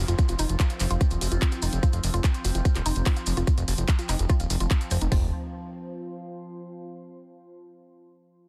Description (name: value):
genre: psychedelic trance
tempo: 146 BPM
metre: 4/4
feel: straight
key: unclear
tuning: A4 = 440 Hz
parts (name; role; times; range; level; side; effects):
- overtone-sweeping drone; sustained chords; 0.0-5.2 s; F3 to C4; -40 LUFS; equal; chorus, built-in reverb, phaser, sidechain pumping
- fat analog bass; bass; 0.0-5.3 s; Eb1 to F1; -28 LUFS; equal; none
- downlifter; sound effects; 0.0-1.8 s; none; -50 LUFS; equal; none
- deep dark ambient pad; texture; 0.1-6.7 s; F4 to C6; -46 LUFS; equal; none
- woody wave-folded pluck; riff; 0.1-5.3 s; Eb4 to F5; -38 LUFS; equal; chorus, sidechain pumping, delay
- garage drum kit; drums; 0.1-5.1 s; handclaps, hi-hat; -36 LUFS; equal; none
- maracas; percussion; 0.1-5.1 s; none; -40 LUFS; equal; none
- garage drum kit; drums; 0.2-5.2 s; hi-hat, kick drum, toms; -25 LUFS; equal; none
room: little or no reverb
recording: dense, heavily limited modern master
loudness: -25 LUFS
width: mono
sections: 0.0-5.1 A section; 5.1-6.8 B section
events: none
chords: 0.0 F5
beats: | 0.19 0.60 1.01 1.42 | 1.83 2.24 2.65 3.06 | 3.47 3.88 4.30 4.71 | 5.12 5.53 5.94 6.35